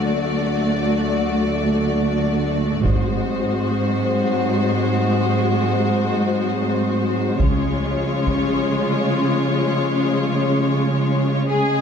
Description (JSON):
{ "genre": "cinematic, epic orchestral film score", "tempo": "free time", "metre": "none", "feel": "none", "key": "unclear", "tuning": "A4 = 438 Hz", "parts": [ { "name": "clear symphonic violin section", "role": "melody", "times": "0.0-11.8 s", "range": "G#4 to D5", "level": "-27 LUFS", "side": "left 3 dB", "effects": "none" }, { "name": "rich symphonic violin section", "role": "second line", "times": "0.0-11.8 s", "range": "E#4 to G#4", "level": "-27 LUFS", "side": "left 4 dB", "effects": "none" }, { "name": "rich symphonic viola section", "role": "accompaniment", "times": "0.0-11.8 s", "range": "G#3 to A3", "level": "-25 LUFS", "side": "equal", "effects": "none" }, { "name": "mellow French horn section", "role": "sustained chords", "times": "0.0-11.8 s", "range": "E#3 to D4", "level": "-25 LUFS", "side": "left 4 dB", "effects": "none" }, { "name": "rich symphonic cello section", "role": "bass", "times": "0.0-11.8 s", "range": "D2 to C#3", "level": "-22 LUFS", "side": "right 2 dB", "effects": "none" }, { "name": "rich symphonic double bass section", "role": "bass", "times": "2.8-3.4, 7.4-7.9 s", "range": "G#1 to C#2", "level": "-25 LUFS", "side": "right 4 dB", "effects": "none" }, { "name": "taiko ensemble", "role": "drums", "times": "2.8-3.9, 7.4-8.5 s", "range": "none", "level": "-23 LUFS", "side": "equal", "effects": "none" }, { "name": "bright small flute group", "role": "second line", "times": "11.5-11.8 s", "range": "G#4", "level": "-23 LUFS", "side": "left 1 dB", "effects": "none" } ], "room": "moderate scoring stage reverb, RT60 1.7 s", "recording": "dark, warm production", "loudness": "-17 LUFS", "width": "side -7 dB against mid", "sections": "0.0-11.8 A section", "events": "build-up 0.0-11.8", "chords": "0.0 D; 2.9 G#7; 7.4 C#" }